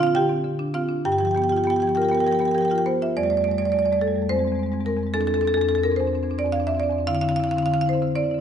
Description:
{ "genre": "classical, contemporary piece for solo marimba", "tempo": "191-223 BPM (eighths)", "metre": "7/8", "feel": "rubato", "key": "F major", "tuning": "A4 = 439 Hz", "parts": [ { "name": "marimba with medium hard mallets", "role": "solo", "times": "0.0-8.4 s", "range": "F2 to G5", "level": "-20 LUFS", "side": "equal", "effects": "none" } ], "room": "wet recital hall reverb, RT60 1.6 s", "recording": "nothing above 10.6 kHz", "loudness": "-20 LUFS", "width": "side -8 dB against mid", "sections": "0.0-3.2 A section; 3.2-8.4 B section", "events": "none", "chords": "0.0 Bbadd9; 1.0 G7; 3.2 F69; 4.3 Ab/F; 5.1 Csus24/F; 7.1 Dm9" }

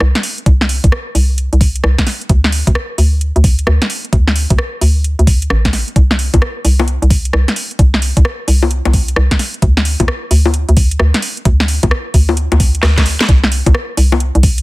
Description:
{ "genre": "UK garage, two-step garage", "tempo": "131 BPM", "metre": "4/4", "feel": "swing 65% on 16ths", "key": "unclear", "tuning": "A4 = 440 Hz", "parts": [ { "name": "hollow knocking FM bass", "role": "bass", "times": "0.0-14.6 s", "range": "A1 to D2", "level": "-12 LUFS", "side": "equal", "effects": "sidechain pumping" }, { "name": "garage drum kit", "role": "drums", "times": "0.0-14.6 s", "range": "bongos, hi-hat, rim click, snare drum", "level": "-17 LUFS", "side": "left 1 dB", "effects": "soft clipping on snare" }, { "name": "electronic kick drum", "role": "drums", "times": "0.5-14.6 s", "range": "none", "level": "-12 LUFS", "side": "equal", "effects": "none" } ], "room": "digital ambience", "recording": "dense, heavily limited modern master", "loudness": "-11 LUFS", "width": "side -21 dB against mid", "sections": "0.0-13.3 A section; 13.3-14.6 B section", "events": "drum fill 12.8-13.3; drop 13.3-14.6", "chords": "none" }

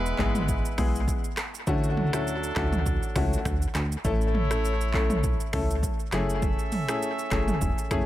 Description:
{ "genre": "afrobeats", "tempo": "101 BPM", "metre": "4/4", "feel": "swing 55% on 16ths", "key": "unclear", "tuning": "A4 = 440 Hz", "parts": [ { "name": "clear horn section", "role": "second line", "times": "0.0-8.1 s", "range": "F#3 to E5", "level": "-34 LUFS", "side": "right 2 dB", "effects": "none" }, { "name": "plucky analog bass", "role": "bass", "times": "0.0-8.0 s", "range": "E1 to D2", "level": "-28 LUFS", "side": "equal", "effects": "none" }, { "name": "deep house drum kit", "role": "drums", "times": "0.1-8.1 s", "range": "finger snaps, handclaps, hi-hat, kick drum, rim click, shaker, toms", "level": "-28 LUFS", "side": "right 1 dB", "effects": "overdrive" }, { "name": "clear baby grand piano", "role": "accompaniment", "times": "0.2-8.1 s", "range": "G#3 to A4", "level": "-30 LUFS", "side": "left 4 dB", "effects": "analog delay" } ], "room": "little or no reverb", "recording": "echo-heavy mix", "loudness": "-24 LUFS", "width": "side -14 dB against mid", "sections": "0.0-8.1 A section", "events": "none", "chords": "0.0 E; 1.7 Dmaj7; 4.0 A; 6.1 F#m7" }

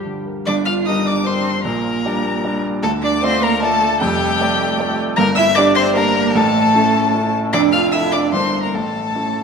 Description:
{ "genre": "quick classical-period movement for piano quartet", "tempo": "153 BPM", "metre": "3/4", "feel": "straight", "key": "G minor", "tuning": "A4 = 441 Hz", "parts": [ { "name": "warm violin", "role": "melody", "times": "0.0-9.4 s", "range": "G5 to F6", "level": "-20 LUFS", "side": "left 5 dB", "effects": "none" }, { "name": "rich violin", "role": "second line", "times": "0.0-9.4 s", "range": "G4 to F5", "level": "-22 LUFS", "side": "left 2 dB", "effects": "none" }, { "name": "warm cello", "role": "second line", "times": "0.0-9.4 s", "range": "G3 to F4", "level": "-21 LUFS", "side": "right 8 dB", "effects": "none" }, { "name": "warm baby grand piano", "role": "accompaniment", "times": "0.0-9.4 s", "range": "F1 to D5", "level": "-19 LUFS", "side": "right 1 dB", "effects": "none" } ], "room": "wet concert hall reverb, RT60 2.0 s", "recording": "minimal, uncompressed stereo recording", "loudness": "-14 LUFS", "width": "side -5 dB against mid", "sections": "0.5-9.4 A section", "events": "none", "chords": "0.5 Gm; 1.6 Gm/Bb; 2.8 Dm; 4.0 Dm/F; 5.2 Gm; 6.4 A; 7.5 Dm/F; 8.3 Em7b5/G; 8.7 A" }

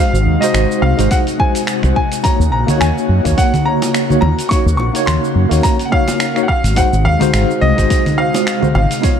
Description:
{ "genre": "sunset chillout", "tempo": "106 BPM", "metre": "4/4", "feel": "swing 56% on 16ths", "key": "unclear", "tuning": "A4 = 440 Hz", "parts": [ { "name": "clear grand piano", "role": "melody", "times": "0.0-9.2 s", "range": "Eb5 to Db6", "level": "-19 LUFS", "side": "equal", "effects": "digital delay" }, { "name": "tine electric piano", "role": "accompaniment", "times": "0.0-9.2 s", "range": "Ab3 to Db5", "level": "-18 LUFS", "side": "moving between left 6 dB and right 6 dB", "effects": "overdrive, medium stereo tremolo, auto-pan" }, { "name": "airy breathy pad", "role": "sustained chords", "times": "0.0-9.2 s", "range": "C3 to Gb4", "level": "-21 LUFS", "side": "left 2 dB", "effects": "chorus, phaser" }, { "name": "fingered electric bass", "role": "bass", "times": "0.1-8.9 s", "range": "Ab1 to Gb2", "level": "-14 LUFS", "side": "equal", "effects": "none" }, { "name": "dusty soul sampler-style drum kit", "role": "drums", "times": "0.1-9.2 s", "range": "congas, finger snaps, hi-hat, shaker", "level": "-21 LUFS", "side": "equal", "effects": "none" }, { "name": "electronic kick drum", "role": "drums", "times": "1.1-9.2 s", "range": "none", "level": "-16 LUFS", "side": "equal", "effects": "overdrive" }, { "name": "bongos", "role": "percussion", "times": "3.8-8.9 s", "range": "none", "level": "-24 LUFS", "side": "right 2 dB", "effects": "none" } ], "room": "light reverb", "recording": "dark, warm production", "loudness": "-12 LUFS", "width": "side -8 dB against mid", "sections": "0.0-9.2 A section", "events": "none", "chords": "0.0 Ab7; 2.2 Ebm7; 6.5 Ab7" }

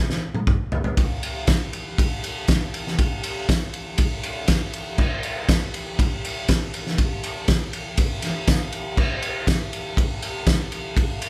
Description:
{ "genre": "rock", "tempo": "120 BPM", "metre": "4/4", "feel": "straight", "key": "none", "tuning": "none", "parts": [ { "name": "loose indie drum kit", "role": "drums", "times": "0.1-11.3 s", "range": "crash cymbal, kick drum, ride cymbal, snare drum, toms", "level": "-23 LUFS", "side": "equal", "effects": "none" }, { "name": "tambourine", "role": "percussion", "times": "1.5-10.6 s", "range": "none", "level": "-43 LUFS", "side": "equal", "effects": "none" } ], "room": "light reverb", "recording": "band playing live in one room", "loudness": "-24 LUFS", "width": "mono", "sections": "1.0-11.3 A section", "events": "drum fill 0.0-1.0", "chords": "none" }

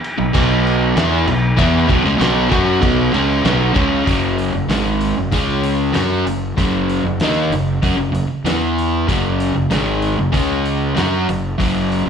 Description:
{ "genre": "garage rock duo or trio", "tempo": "96 BPM", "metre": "4/4", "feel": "straight", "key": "unclear", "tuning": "A4 = 440 Hz", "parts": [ { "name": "cloth-damped thuddy drum kit", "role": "drums", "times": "0.0-12.1 s", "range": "crash cymbal, hi-hat, kick drum, snare drum", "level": "-22 LUFS", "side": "equal", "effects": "none" }, { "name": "crunchy overdriven guitar", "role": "riff", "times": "0.2-12.1 s", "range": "F#2 to F#4", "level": "-16 LUFS", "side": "equal", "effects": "slapback echo" }, { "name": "fuzz fingered electric bass", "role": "bass", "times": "0.2-12.1 s", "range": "F#1 to F#2", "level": "-22 LUFS", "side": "equal", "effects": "overdrive" } ], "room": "studio reverb", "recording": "live gig heard through the venue's PA, club reverb", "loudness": "-14 LUFS", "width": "side -7 dB against mid", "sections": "0.0-4.1 A section; 4.1-12.1 B section", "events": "none", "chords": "0.0 B5; 4.1 F#5; 5.3 C#5; 5.9 F#5; 8.5 E5; 9.1 F#5; 10.3 C#5; 11.0 F#5" }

